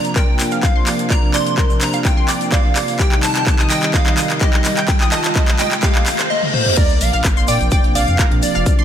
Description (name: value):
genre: progressive house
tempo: 127 BPM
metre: 4/4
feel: straight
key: Bb major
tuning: A4 = 441 Hz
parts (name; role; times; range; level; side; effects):
- plucky unison lead; melody; 0.0-8.8 s; C5 to C6; -22 LUFS; equal; phaser, sidechain pumping, dub echo
- warm analog pad; sustained chords; 0.0-8.8 s; C3 to F4; -23 LUFS; right 2 dB; chorus, sidechain pumping
- analog pluck; arpeggios; 0.0-8.8 s; G4 to F6; -24 LUFS; right 2 dB; chorus, sidechain pumping, digital delay
- saturated sub bass; bass; 0.0-8.6 s; F1 to Bb2; -19 LUFS; equal; sidechain pumping, high-pass filter
- house drum kit; drums; 0.0-8.8 s; crash cymbal, handclaps, hi-hat, toms; -21 LUFS; left 1 dB; none
- egg shaker; percussion; 0.0-8.8 s; none; -30 LUFS; left 4 dB; none
- riser, reverse cymbal and sub drop; sound effects; 2.3-8.7 s; none; -26 LUFS; left 1 dB; none
- electronic kick drum; drums; 0.2-8.8 s; none; -15 LUFS; equal; none
- soft supersaw; second line; 6.8-8.8 s; D5 to G5; -26 LUFS; equal; sidechain pumping, digital delay
room: light reverb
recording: none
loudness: -13 LUFS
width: side -9 dB against mid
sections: 0.0-6.8 A section; 6.8-8.8 B section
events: build-up 0.0-6.8; drum fill 0.0-6.3, 6.4-6.8; riser 2.3-6.8; reverse cymbal 5.8-6.8; drop 6.8-8.8; impact 6.8-8.7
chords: 0.0 Bbadd9; 3.0 Cm; 6.8 Bbadd9